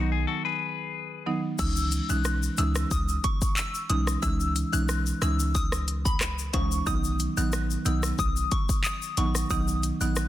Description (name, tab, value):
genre	dancehall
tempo	91 BPM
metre	4/4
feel	straight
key	C# minor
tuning	A4 = 441 Hz
part	buzzing marimba with medium hard mallets	accompaniment	0.0-10.1 s	D#3 to D#4	-31 LUFS	right 2 dB	none
part	clean electric guitar	arpeggios	0.0-1.4 s	D#4 to B4	-30 LUFS	left 12 dB	none
part	clean 808-style bass	bass	0.0-10.3 s	A1 to C#2	-28 LUFS	equal	none
part	soft synth bell	melody	1.6-10.3 s	B5 to F#6	-32 LUFS	left 1 dB	chorus, phaser, tape echo
part	afro-pop drum kit	drums	1.6-10.3 s	crash cymbal, handclaps, hi-hat, kick drum, rim click, shaker	-29 LUFS	equal	soft clipping on snare
part	tube shaker and timbales	percussion	1.6-10.3 s	none	-37 LUFS	left 10 dB	none
room	digital ambience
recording	dense, heavily limited modern master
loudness	-24 LUFS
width	side -13 dB against mid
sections	0.0-1.6 A section; 1.6-10.3 B section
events	break 0.3-1.6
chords	0.0 B; 1.6 C#madd9; 6.9 B